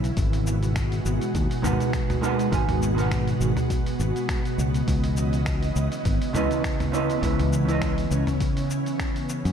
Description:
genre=sunset chillout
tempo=102 BPM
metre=4/4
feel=swing 55% on 16ths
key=G# minor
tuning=A4 = 440 Hz
part: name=vintage hollow-body jazz guitar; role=accompaniment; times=0.0-9.5 s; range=C#3 to G#5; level=-27 LUFS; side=moving between left 2 dB and right 5 dB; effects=auto-pan, tape echo
part: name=ethereal airy pad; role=sustained chords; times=0.0-9.5 s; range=B2 to D#5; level=-27 LUFS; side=right 1 dB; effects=ensemble chorus, built-in reverb
part: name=fretless electric bass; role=bass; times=0.0-9.5 s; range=G#1 to F#2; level=-25 LUFS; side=left 1 dB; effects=none
part: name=dusty soul sampler-style drum kit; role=drums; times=0.0-9.5 s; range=cabasa, finger snaps, hi-hat, toms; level=-33 LUFS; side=equal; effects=small room reverb
part: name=electronic kick drum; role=drums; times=0.2-9.1 s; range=none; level=-27 LUFS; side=left 1 dB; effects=small room reverb
room=light reverb, digital ambience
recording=none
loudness=-22 LUFS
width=side -8 dB against mid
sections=0.0-9.5 A section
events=none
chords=0.2 G#m9; 4.6 C#m9

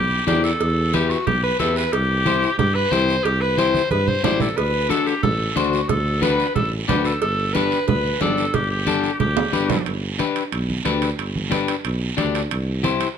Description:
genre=latin, cumbia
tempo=181 BPM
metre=4/4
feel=straight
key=G major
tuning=A4 = 439 Hz
part: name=bright clarinet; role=second line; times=0.0-9.8 s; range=F#4 to C5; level=-22 LUFS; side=left 1 dB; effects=none
part: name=mellow tuba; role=bass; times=0.0-13.0 s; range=G1 to G2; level=-24 LUFS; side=right 1 dB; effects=none
part: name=electric guitar at the edge of break-up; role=accompaniment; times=0.3-13.1 s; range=D4 to D5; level=-23 LUFS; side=left 7 dB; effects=none
part: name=congas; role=percussion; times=0.3-13.0 s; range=none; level=-26 LUFS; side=right 4 dB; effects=none
part: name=cowbell and timbales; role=percussion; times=0.3-13.2 s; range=none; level=-28 LUFS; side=right 6 dB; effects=none
part: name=guiro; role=percussion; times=0.3-13.2 s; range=none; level=-32 LUFS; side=right 7 dB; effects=none
room=moderate large studio reverb, RT60 1.2 s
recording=close, detailed microphones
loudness=-18 LUFS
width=side -8 dB against mid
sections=0.0-9.9 A section; 9.9-13.2 B section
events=drum fill 3.7-4.6, 9.4-9.9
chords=0.0 Em; 1.9 C; 4.6 D; 7.2 Gadd9; 9.9 G; 12.5 C

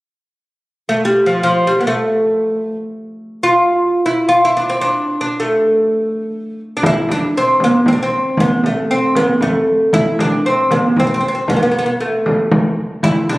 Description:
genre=Arabic maqam ensemble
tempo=116 BPM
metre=3/4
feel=straight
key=A maqam bayati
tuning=A4 = 441 Hz
part: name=oud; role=melody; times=0.9-13.4 s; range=F3 to F4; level=-14 LUFS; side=equal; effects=none
part: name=frame drum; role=percussion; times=6.8-13.4 s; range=none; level=-18 LUFS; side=equal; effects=none
part: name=darbuka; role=percussion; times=13.0-13.4 s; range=none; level=-21 LUFS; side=equal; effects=none
room=moderate recital hall reverb, RT60 1.5 s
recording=recorded on a phone in the room, studio reverb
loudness=-13 LUFS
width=side -19 dB against mid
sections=0.6-6.8 A section; 6.8-13.4 B section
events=none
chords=none

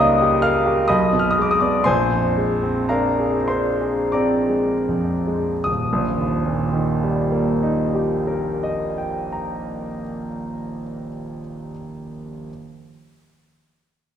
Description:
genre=classical, romantic nocturne for solo piano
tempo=38-69 BPM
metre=3/4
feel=rubato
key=Eb major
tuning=A4 = 439 Hz
part: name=clear concert grand piano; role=solo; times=0.0-12.5 s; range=Eb1 to F6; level=-19 LUFS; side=equal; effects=none
room=wet scoring stage reverb, RT60 1.6 s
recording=heard from further back in the room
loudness=-18 LUFS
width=side -9 dB against mid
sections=0.0-5.7 A section; 5.7-10.2 B section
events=slowing down 0.0-5.7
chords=0.0 Eb7/Db; 0.9 Abm/Cb; 1.9 Bb9; 5.7 Eb

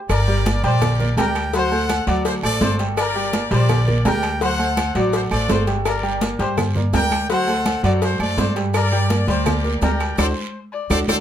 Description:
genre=latin, salsa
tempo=166 BPM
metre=4/4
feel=straight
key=G harmonic minor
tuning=A4 = 442 Hz
part: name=warm concert grand piano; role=accompaniment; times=0.0-11.2 s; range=F#3 to G5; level=-24 LUFS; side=right 2 dB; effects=none
part: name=bright trumpet section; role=melody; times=0.1-11.2 s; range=F#4 to G5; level=-24 LUFS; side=left 1 dB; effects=none
part: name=warm erhu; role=second line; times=0.1-11.1 s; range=Bb4 to D5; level=-27 LUFS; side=left 6 dB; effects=none
part: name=upright bass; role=bass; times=0.1-11.2 s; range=G1 to G2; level=-21 LUFS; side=equal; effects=none
part: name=agogo bells and timbales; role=percussion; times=0.1-11.2 s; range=none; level=-28 LUFS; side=right 5 dB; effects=none
part: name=claves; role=percussion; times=0.1-11.2 s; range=none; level=-32 LUFS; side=right 6 dB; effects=none
part: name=congas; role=percussion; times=0.1-11.2 s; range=none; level=-26 LUFS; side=equal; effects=none
part: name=cowbell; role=percussion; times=0.1-11.2 s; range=none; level=-28 LUFS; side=left 6 dB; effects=none
part: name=guiro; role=percussion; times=0.1-11.2 s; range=none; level=-38 LUFS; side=right 7 dB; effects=none
part: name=maracas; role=percussion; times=0.1-11.2 s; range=none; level=-38 LUFS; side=right 5 dB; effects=none
room=light reverb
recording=close, detailed microphones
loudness=-17 LUFS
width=side -10 dB against mid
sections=0.1-11.2 A section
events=drum fill 10.2-11.2; band accent 10.2-11.2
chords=0.1 Gm; 1.5 D7; 3.0 Gm; 4.4 D7; 5.9 Gm; 7.3 D7; 8.7 Gm; 10.2 D7

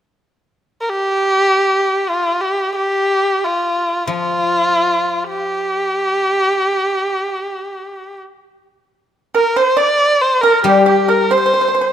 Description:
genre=chinese traditional, Chinese chamber ensemble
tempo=free time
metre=none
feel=none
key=G yu mode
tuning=A4 = 440 Hz
part: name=warm erhu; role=melody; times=0.8-11.9 s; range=F4 to D5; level=-15 LUFS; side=equal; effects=none
part: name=guzheng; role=accompaniment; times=4.1-7.3, 10.6-11.9 s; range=F3 to G3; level=-18 LUFS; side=left 5 dB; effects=none
part: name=pipa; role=second line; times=9.3-11.9 s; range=G4 to D5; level=-15 LUFS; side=right 3 dB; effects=none
room=light reverb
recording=close, detailed microphones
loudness=-13 LUFS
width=side -10 dB against mid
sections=0.3-8.9 A section; 8.9-11.9 B section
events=none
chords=none

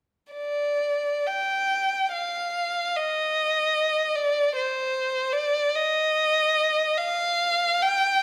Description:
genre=classical, free, expressive piece for unaccompanied violin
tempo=free time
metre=none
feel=none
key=unclear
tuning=A4 = 440 Hz
part: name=rich violin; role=solo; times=0.3-8.2 s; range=C5 to G5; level=-24 LUFS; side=equal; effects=none
room=wet recital hall reverb, RT60 1.5 s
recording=none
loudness=-24 LUFS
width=mono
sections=0.3-8.2 A section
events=none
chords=none

